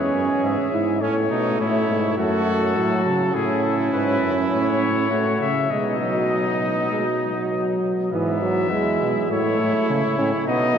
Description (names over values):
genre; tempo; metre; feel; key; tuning
classical, imitative canzona for brass ensemble; 102 BPM; 4/4; straight; F# minor, E major from 3.3 s; A4 = 441 Hz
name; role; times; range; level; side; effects
warm trumpet; melody; 0.0-10.8 s; G#4 to E5; -26 LUFS; left 5 dB; none
clear trumpet; second line; 0.0-10.8 s; B3 to A4; -26 LUFS; right 3 dB; none
warm trombone; accompaniment; 0.0-10.8 s; E3 to E4; -22 LUFS; right 1 dB; none
warm bass trombone; bass; 0.0-10.8 s; E2 to C#3; -26 LUFS; equal; none
room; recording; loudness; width
wet cathedral reverb, RT60 6.1 s; dark, warm production; -19 LUFS; side -8 dB against mid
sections
0.0-8.1 A section; 8.1-10.8 B section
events
none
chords
0.0 C#m/E; 1.0 Amaj9#11; 2.2 F#m; 5.7 B; 8.1 E/G#; 9.3 A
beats
0.44 | 1.02 1.61 2.19 2.77 | 3.35 3.93 4.51 5.11 | 5.71 6.31 6.92 7.52 | 8.12 8.71 9.30 9.89 | 10.47